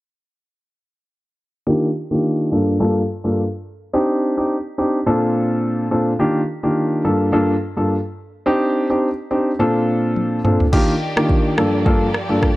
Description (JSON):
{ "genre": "afrobeats", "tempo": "106 BPM", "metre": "4/4", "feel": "swing 55% on 16ths", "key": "unclear", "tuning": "A4 = 439 Hz", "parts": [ { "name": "dark grand piano", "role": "accompaniment", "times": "1.7-12.5 s", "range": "G2 to A4", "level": "-16 LUFS", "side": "equal", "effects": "low-pass filter" }, { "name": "afro-pop drum kit", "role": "drums", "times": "10.2-12.6 s", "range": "crash cymbal, kick drum, rim click, toms", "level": "-18 LUFS", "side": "equal", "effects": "none" }, { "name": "warm studio string section", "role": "sustained chords", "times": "10.7-12.6 s", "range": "Eb3 to D5", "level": "-26 LUFS", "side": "equal", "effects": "none" } ], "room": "studio ambience", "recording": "dry, gritty hardware recording", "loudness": "-16 LUFS", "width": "side -18 dB against mid", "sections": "1.7-10.7 A section; 10.7-12.6 B section", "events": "filter sweep on grand piano 1.7-10.7; drum fill 10.2-10.7", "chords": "1.7 Ebmaj7; 2.5 Gm7; 3.9 Cmadd9; 5.1 Bbmaj7; 6.2 Ebmaj7; 7.0 Gm7; 8.5 Cmadd9; 9.6 Bbmaj7; 10.7 Ebmaj7; 11.6 Gm7", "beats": "| 1.67 2.24 2.80 3.37 | 3.94 4.50 5.07 5.63 | 6.20 6.77 7.33 7.90 | 8.46 9.03 9.60 10.16 | 10.73 11.29 11.86 12.43" }